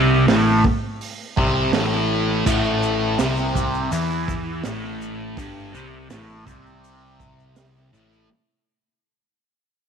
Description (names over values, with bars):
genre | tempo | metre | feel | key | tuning
psychedelic rock | 82 BPM | 4/4 | straight | unclear | A4 = 440 Hz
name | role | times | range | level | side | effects
fuzz guitar | riff | 0.0-8.3 s | G2 to E3 | -21 LUFS | left 1 dB | distortion, phaser
fuzz picked electric bass | bass | 0.0-8.3 s | G1 to E2 | -25 LUFS | left 1 dB | overdrive
crunchy breakbeat drum kit | drums | 0.3-7.7 s | crash cymbal, hi-hat, kick drum, snare drum | -24 LUFS | right 4 dB | none
tube shaker | percussion | 2.5-8.2 s | none | -41 LUFS | left 12 dB | none
room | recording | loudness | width
light reverb | 1960s-style stereo | -18 LUFS | side -7 dB against mid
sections
0.0-8.3 A section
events
fade-out 0.0-8.3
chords
0.0 A5